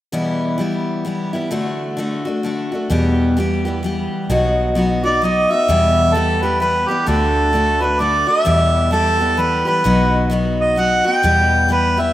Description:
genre	honky-tonk and classic country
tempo	130 BPM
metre	3/4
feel	swing 61% on 8ths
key	E minor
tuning	A4 = 440 Hz
part	picked steel-string acoustic guitar	accompaniment	0.1-12.1 s	E2 to G4	-19 LUFS	left 1 dB	none
part	vintage muted fingered electric bass	bass	2.9-12.1 s	B1 to E2	-21 LUFS	right 1 dB	none
part	mellow harmonica	melody	5.0-12.1 s	G4 to G5	-16 LUFS	right 1 dB	none
room	moderate lush hall reverb, RT60 2.3 s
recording	rough home demo mix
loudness	-14 LUFS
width	side -14 dB against mid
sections	0.1-5.7 A section; 5.7-12.1 B section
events	none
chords	0.1 Em; 1.5 D; 2.9 Em; 4.3 B; 5.7 Em; 7.1 D; 8.5 Em; 9.9 B; 11.2 Em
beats	| 0.13 0.59 1.06 | 1.52 1.98 2.45 | 2.91 3.37 3.83 | 4.30 4.76 5.22 | 5.69 6.15 6.61 | 7.08 7.54 8.00 | 8.46 8.93 9.39 | 9.85 10.32 10.78 | 11.24 11.71

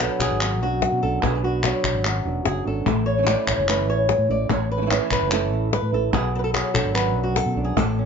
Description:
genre	flamenco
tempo	147 BPM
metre	4/4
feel	straight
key	unclear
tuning	A4 = 440 Hz
part	flamenco guitar	melody	0.0-8.1 s	F#2 to D5	-23 LUFS	equal	plate reverb
part	flamenco guitar	stabs	0.0-7.8 s	B2 to F#4	-28 LUFS	right 8 dB	none
part	fretless electric bass	bass	0.0-8.1 s	E1 to B2	-25 LUFS	equal	none
part	cajon	percussion	0.0-8.0 s	none	-26 LUFS	left 7 dB	none
part	palmas hand claps	percussion	0.0-8.0 s	none	-27 LUFS	equal	none
room	light reverb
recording	nothing above 7.6 kHz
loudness	-19 LUFS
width	side -6 dB against mid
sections	0.0-8.1 A section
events	none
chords	0.0 Bm; 2.9 A; 6.1 Bm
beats	0.00 0.41 0.82 | 1.23 1.64 2.05 2.46 | 2.87 3.28 3.69 4.09 | 4.50 4.91 5.32 5.73 | 6.14 6.54 6.95 7.36 | 7.77

